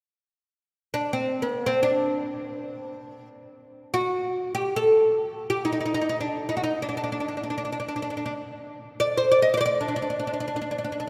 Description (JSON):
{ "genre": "turkish", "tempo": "free time", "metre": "none", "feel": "none", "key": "D makam hicaz", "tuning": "A4 = 439 Hz", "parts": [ { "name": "oud", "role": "melody", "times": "0.9-11.1 s", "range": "B3-40c to Eb5", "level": "-26 LUFS", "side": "equal", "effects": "none" } ], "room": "wet cathedral reverb, RT60 4.5 s", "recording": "recorded in a church or concert hall", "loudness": "-26 LUFS", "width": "mono", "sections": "0.7-11.1 A section", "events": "none", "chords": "none" }